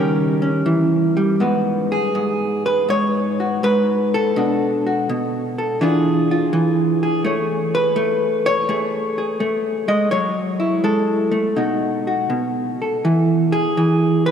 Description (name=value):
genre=solo jazz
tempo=83 BPM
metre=4/4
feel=swing 68% on 8ths, rubato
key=unclear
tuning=A4 = 440 Hz
part: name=vintage hollow-body jazz guitar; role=solo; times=0.0-14.3 s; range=G#2 to D#5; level=-16 LUFS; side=equal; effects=none
room=wet cathedral reverb, RT60 4.3 s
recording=recorded in a church or concert hall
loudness=-16 LUFS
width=side -8 dB against mid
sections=0.0-1.4 A section; 1.4-14.3 B section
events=hollow-body jazz guitar solo 0.0-1.4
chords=0.0 D#7; 1.4 G#m7; 4.4 Bm7; 5.8 E7b9; 7.3 Amaj9; 10.1 F#m9; 11.6 B7; 13.0 E